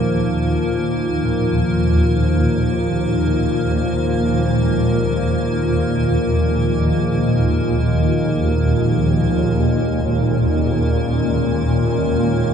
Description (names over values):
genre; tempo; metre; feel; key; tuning
dark ambient drone; free time; none; none; unclear; A4 = 440 Hz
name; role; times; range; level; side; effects
sweeping resonant pad; sustained chords; 0.0-12.5 s; Eb3 to F4; -21 LUFS; equal; chorus, phaser
swarming drone; drone; 0.0-12.5 s; Eb2 to Bb2; -18 LUFS; equal; built-in reverb
icy glass pad; texture; 0.0-12.5 s; Bb3 to Bb4; -24 LUFS; left 1 dB; chorus, built-in reverb, shimmer reverb
room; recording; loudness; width
wet huge ambient reverb, RT60 7.1 s; dark, warm production; -16 LUFS; side -8 dB against mid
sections
0.0-12.5 A section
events
filter sweep on synth drone 0.0-12.5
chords
0.0 Ebsus2; 9.5 Dbadd9/Eb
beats
free time